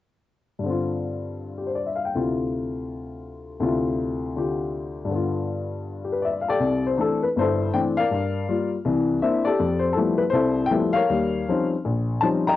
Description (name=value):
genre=solo jazz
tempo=161 BPM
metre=4/4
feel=swing 64% on 8ths, rubato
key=C major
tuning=A4 = 439 Hz
part: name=warm baby grand piano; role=solo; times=0.6-12.6 s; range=G1 to Bb5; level=-22 LUFS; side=left 3 dB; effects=none
room=wet studio reverb, RT60 0.5 s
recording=home recording on cassette, nothing above 7.8 kHz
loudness=-22 LUFS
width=side -14 dB against mid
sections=0.6-6.6 A section; 6.6-12.6 B section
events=none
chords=0.6 G7sus4; 2.1 Dm9; 5.1 G7; 6.6 C69; 8.1 Gm7; 8.9 C9; 9.6 Fmaj9#11; 11.1 Eb13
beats=| 0.63 1.01 1.39 1.76 | 2.14 2.51 2.88 3.25 | 3.62 3.98 4.36 4.73 | 5.10 5.47 5.85 6.24 | 6.62 7.00 7.37 7.75 | 8.12 8.49 8.86 9.23 | 9.60 9.97 10.34 10.71 | 11.09 11.47 11.85 12.22